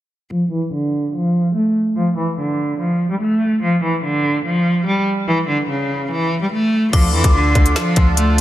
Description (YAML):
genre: hip hop, drill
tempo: 145 BPM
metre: 4/4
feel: half-time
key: D harmonic minor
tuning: A4 = 440 Hz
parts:
  - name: rich cello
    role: melody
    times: 0.3-8.3 s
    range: C#3 to A3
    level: -16 LUFS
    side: equal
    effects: low-pass filter, ping-pong delay
  - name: metallic FM bell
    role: second line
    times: 6.9-7.7 s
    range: D6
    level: -25 LUFS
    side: left 6 dB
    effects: chorus, ping-pong delay
  - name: accordion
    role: sustained chords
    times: 6.9-8.4 s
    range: D3 to A4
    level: -23 LUFS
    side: right 4 dB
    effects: light tremolo tuning
  - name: long sustained 808-style bass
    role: bass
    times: 6.9-8.4 s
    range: D2 to F2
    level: -17 LUFS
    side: equal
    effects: none
  - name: drill drum kit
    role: drums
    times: 6.9-8.4 s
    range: crash cymbal, hi-hat, kick drum, snare drum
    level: -16 LUFS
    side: equal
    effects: none
room: light reverb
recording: dense, heavily limited modern master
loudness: -15 LUFS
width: side -13 dB against mid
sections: 0.3-6.9 A section; 6.9-8.4 B section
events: filter sweep on cello 0.3-6.9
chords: 0.3 N.C.; 6.9 Dm